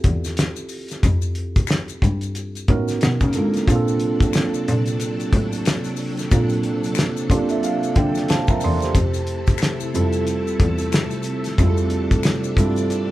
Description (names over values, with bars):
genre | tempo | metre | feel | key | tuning
R&B, neo-soul | 91 BPM | 4/4 | swing 60% on 16ths | F major | A4 = 440 Hz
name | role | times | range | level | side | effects
mellow tine electric piano | accompaniment | 0.0-13.1 s | G3 to C6 | -24 LUFS | right 3 dB | none
bright cello | bass | 0.0-13.1 s | E2 to F3 | -23 LUFS | left 1 dB | none
cloth-damped thuddy drum kit | drums | 0.0-13.1 s | hi-hat, kick drum, snare drum | -20 LUFS | left 1 dB | none
maracas and finger snaps | percussion | 0.2-13.1 s | none | -35 LUFS | left 7 dB | none
string machine, violins | sustained chords | 3.0-13.1 s | C3 to A4 | -28 LUFS | left 1 dB | ensemble chorus
room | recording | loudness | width
light reverb | band playing live in one room | -18 LUFS | side -16 dB against mid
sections
0.0-13.1 A section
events
tine electric piano fill 7.0-8.9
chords
0.0 Fmaj7; 3.0 Bmaj9; 3.7 Bbmaj9; 8.9 Fmaj7